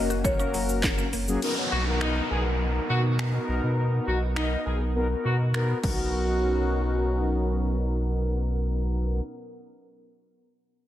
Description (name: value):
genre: dance-pop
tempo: 102 BPM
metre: 4/4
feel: straight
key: B major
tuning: A4 = 439 Hz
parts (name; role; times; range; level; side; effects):
- buzzing marimba with medium hard mallets; melody; 0.0-1.1 s; C#5 to D#5; -31 LUFS; left 2 dB; slapback echo, tape echo
- mellow synth brass; accompaniment; 0.0-9.2 s; F#3 to C#5; -31 LUFS; left 2 dB; chorus, sidechain pumping, low-pass filter, slapback echo
- warm analog pad; sustained chords; 0.0-9.2 s; B2 to A#4; -34 LUFS; equal; chorus, sidechain pumping, low-pass filter
- warm sub bass; bass; 0.0-9.2 s; F#1 to B2; -26 LUFS; equal; sidechain pumping
- mallet-like synth pluck; arpeggios; 0.1-1.3 s; F#3 to F#4; -37 LUFS; left 2 dB; chorus, phaser, sidechain pumping, slapback echo, tape echo
- house drum kit; drums; 0.1-6.0 s; crash cymbal, finger snaps, handclaps, hi-hat, kick drum, shaker, snare drum; -30 LUFS; equal; overdrive
- downlifter; sound effects; 1.4-6.1 s; none; -35 LUFS; right 1 dB; none
- warm horn section; melody; 1.7-7.9 s; D#4 to G#4; -31 LUFS; equal; sidechain pumping, low-pass filter, slapback echo, tape echo
room: light reverb, digital ambience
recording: lossy compression artefacts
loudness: -24 LUFS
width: side -12 dB against mid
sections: 0.0-1.4 A section; 1.4-6.1 B section; 6.1-8.5 C section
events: filter sweep 1.4-6.1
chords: 0.0 F#; 1.4 Bmaj7